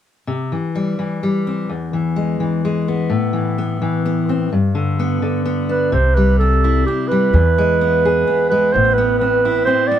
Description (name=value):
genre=folk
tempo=128 BPM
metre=3/4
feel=straight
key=C major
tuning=A4 = 439 Hz
part: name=fingerpicked steel-string acoustic guitar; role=accompaniment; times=0.3-10.0 s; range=E2 to G#4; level=-18 LUFS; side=left 2 dB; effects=none
part: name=dark clarinet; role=second line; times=5.7-10.0 s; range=G4 to D5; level=-16 LUFS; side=right 4 dB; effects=none
part: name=upright bass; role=bass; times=5.9-9.6 s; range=A1 to E2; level=-17 LUFS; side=equal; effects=none
room=light reverb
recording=none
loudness=-15 LUFS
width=side -10 dB against mid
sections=0.3-5.9 A section; 5.9-10.0 B section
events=clarinet solo 5.9-10.0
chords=0.3 C; 1.7 E; 3.1 Amadd9; 4.5 G; 5.9 C; 7.3 E; 8.7 Amadd9